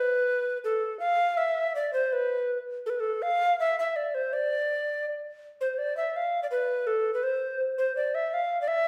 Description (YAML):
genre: medieval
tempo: 163 BPM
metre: 3/4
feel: straight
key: D dorian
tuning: A4 = 440 Hz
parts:
  - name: mellow tenor recorder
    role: solo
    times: 0.0-8.9 s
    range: A4 to F5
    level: -28 LUFS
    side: equal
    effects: none
room: wet recital hall reverb, RT60 1.3 s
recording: heard from further back in the room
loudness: -28 LUFS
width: mono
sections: 0.0-5.4 A section; 5.4-8.9 B section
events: none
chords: none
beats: 0.24 0.61 | 0.98 1.35 1.72 | 2.09 2.46 2.83 | 3.20 3.57 3.94 | 4.31 4.68 5.05 | 5.41 5.78 6.15 | 6.52 6.89 7.25 | 7.62 7.99 8.36 | 8.72